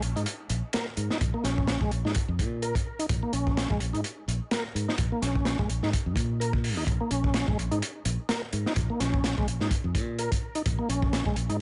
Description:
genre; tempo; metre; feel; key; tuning
breakbeat, breaks; 127 BPM; 4/4; swing 56% on 16ths; Bb minor; A4 = 441 Hz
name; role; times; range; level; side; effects
tonewheel organ; riff; 0.0-11.6 s; Ab3 to Bb4; -34 LUFS; equal; chorus vibrato, stopped rotary speaker, tube saturation, dub echo
fingered electric bass; bass; 0.0-11.6 s; Bb1 to Bb2; -32 LUFS; equal; tube saturation
crunchy breakbeat drum kit; drums; 0.0-11.6 s; hi-hat, kick drum, snare drum; -32 LUFS; equal; none
room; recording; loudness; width
studio reverb; nothing above 10.9 kHz; -28 LUFS; mono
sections
0.0-11.6 A section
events
none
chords
0.0 Bbm

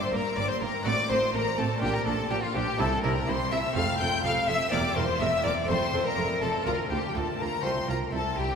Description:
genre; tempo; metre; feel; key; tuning
classical, baroque-style concerto movement with solo episodes; 124 BPM; 4/4; straight; F major; A4 = 440 Hz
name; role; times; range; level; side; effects
rich chamber violin section; melody; 0.0-8.6 s; F5 to G6; -34 LUFS; left 4 dB; none
rich violin; melody; 0.0-8.6 s; F4 to G5; -31 LUFS; left 1 dB; none
rich studio violin section; second line; 0.0-8.6 s; F4 to G5; -30 LUFS; left 2 dB; none
lute; accompaniment; 0.0-8.6 s; D2 to G4; -37 LUFS; left 1 dB; none
rich chamber viola section; accompaniment; 0.1-8.5 s; Bb3 to Bb4; -35 LUFS; right 2 dB; none
rich chamber double bass section; bass; 0.1-8.5 s; E1 to D2; -34 LUFS; right 2 dB; none
rich studio cello section; bass; 0.1-8.5 s; C2 to C3; -32 LUFS; right 2 dB; none
room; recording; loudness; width
wet cathedral reverb, RT60 6.5 s; recorded in a church or concert hall; -24 LUFS; side -6 dB against mid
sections
0.0-8.6 A section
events
none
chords
0.0 Gm; 0.9 D7/A; 1.8 Gm/Bb; 2.8 C; 3.8 F; 4.7 C7/E; 5.7 F; 6.7 Bb/D; 7.6 F/C

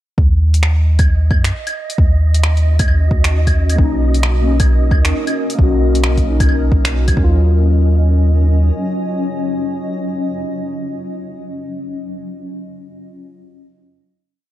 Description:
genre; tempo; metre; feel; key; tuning
future garage; 133 BPM; 4/4; swing 61% on 16ths; Eb minor; A4 = 440 Hz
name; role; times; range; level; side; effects
soft dub sub bass; bass; 0.2-8.7 s; B1 to Gb2; -13 LUFS; equal; sidechain pumping
electronic kick drum; drums; 0.2-7.3 s; none; -15 LUFS; equal; overdrive
wind-like tuned noise texture; texture; 0.9-7.4 s; Eb5; -31 LUFS; right 5 dB; built-in reverb
deep house drum kit; drums; 0.5-7.2 s; claves, finger snaps, hi-hat; -22 LUFS; equal; overdrive
granular cloud pad; sustained chords; 2.7-11.3 s; Gb3 to Eb5; -24 LUFS; left 1 dB; built-in reverb, sidechain pumping
muted felt-like synth keys; accompaniment; 3.8-13.5 s; Gb3 to F#4; -23 LUFS; left 2 dB; chorus, phaser, sidechain pumping, tape echo
room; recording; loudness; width
little or no reverb; dark, warm production; -12 LUFS; side -14 dB against mid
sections
0.2-7.4 groove; 7.4-11.0 final hit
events
none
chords
0.2 Ebm7; 3.8 Bmaj9; 7.2 Ebm7

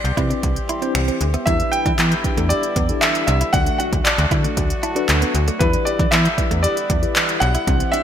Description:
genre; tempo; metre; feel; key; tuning
dance-pop; 116 BPM; 4/4; straight; E minor; A4 = 442 Hz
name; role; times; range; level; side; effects
clear concert grand piano; melody; 0.0-8.0 s; B4 to G5; -23 LUFS; equal; digital delay
warm brass ensemble; sustained chords; 0.0-8.0 s; D3 to G4; -31 LUFS; right 1 dB; sidechain pumping
thumb-piano-like synth pluck; arpeggios; 0.0-8.0 s; D3 to G6; -30 LUFS; left 5 dB; chorus, sidechain pumping, digital delay
slap-like FM bass; bass; 0.0-7.8 s; B1 to E3; -20 LUFS; equal; sidechain pumping
deep house drum kit; drums; 0.0-8.0 s; finger snaps, handclaps, hi-hat, kick drum; -20 LUFS; equal; gated reverb
tine electric piano; accompaniment; 0.2-8.0 s; C4 to E5; -27 LUFS; left 2 dB; medium stereo tremolo, sidechain pumping
direct-recorded clean electric guitar; riff; 0.2-8.0 s; A3 to E4; -29 LUFS; right 5 dB; wide subtle chorus
room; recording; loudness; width
light reverb, digital ambience; bright 1980s-style digital production; -16 LUFS; side -9 dB against mid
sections
0.0-8.0 A section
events
none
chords
0.0 C; 1.5 Em7; 3.5 D; 5.6 Em7

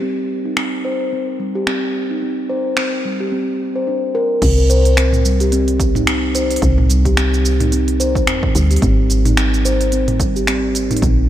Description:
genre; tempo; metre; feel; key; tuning
organic downtempo; 109 BPM; 4/4; swing 57% on 16ths; C minor; A4 = 440 Hz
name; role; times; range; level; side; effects
steel tongue drum; arpeggios; 0.0-11.3 s; G3 to C5; -18 LUFS; equal; low-pass filter, diffuse ambient delay
organic electronic drum kit; drums; 0.6-11.2 s; crash cymbal, finger snaps, hi-hat, shaker, toms; -21 LUFS; right 1 dB; none
woody FM bass; bass; 4.4-11.3 s; Ab1 to F2; -16 LUFS; equal; tube saturation
electronic kick drum; drums; 4.4-11.2 s; none; -19 LUFS; equal; none
room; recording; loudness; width
light reverb; none; -14 LUFS; side -12 dB against mid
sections
0.0-4.4 A section; 4.4-11.3 B section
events
none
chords
0.0 N.C.; 4.4 C5; 8.8 Ab

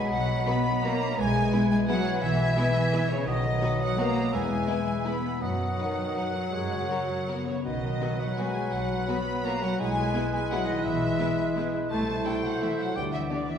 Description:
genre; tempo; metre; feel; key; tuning
classical; 152-184 BPM; 3/4; rubato; unclear; A4 = 438 Hz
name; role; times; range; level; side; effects
rich studio violin section; melody; 0.0-13.6 s; C#5 to B5; -35 LUFS; left 1 dB; none
concert flute; second line; 0.0-13.6 s; C#5 to B5; -35 LUFS; left 1 dB; none
dark clarinet; second line; 0.0-13.6 s; D4 to D#5; -36 LUFS; equal; none
warm oboe; second line; 0.0-13.6 s; B4 to B5; -36 LUFS; right 1 dB; none
mellow bassoon; accompaniment; 0.0-13.5 s; E3 to B3; -34 LUFS; equal; none
mellow French horn section; sustained chords; 0.0-13.6 s; C#3 to B3; -33 LUFS; left 2 dB; none
concert harp; arpeggios; 0.0-13.6 s; E2 to D5; -36 LUFS; left 5 dB; none
rich studio cello section; bass; 0.0-13.6 s; C#3 to B3; -33 LUFS; right 2 dB; none
rich studio double bass section; bass; 0.1-13.2 s; B1 to F#2; -33 LUFS; right 1 dB; none
rich studio violin section; second line; 0.5-13.4 s; D#4 to D5; -40 LUFS; left 2 dB; none
warm studio viola section; accompaniment; 0.5-13.4 s; D#3 to E4; -37 LUFS; equal; none
room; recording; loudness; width
wet scoring stage reverb, RT60 1.6 s; heard from further back in the room; -24 LUFS; side -8 dB against mid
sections
0.0-13.6 A section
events
none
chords
0.0 B; 1.2 E/B; 3.3 B; 4.3 E; 5.4 B/F#; 6.5 F#; 7.6 B; 9.8 E/B; 11.9 Am/C; 13.0 G/D

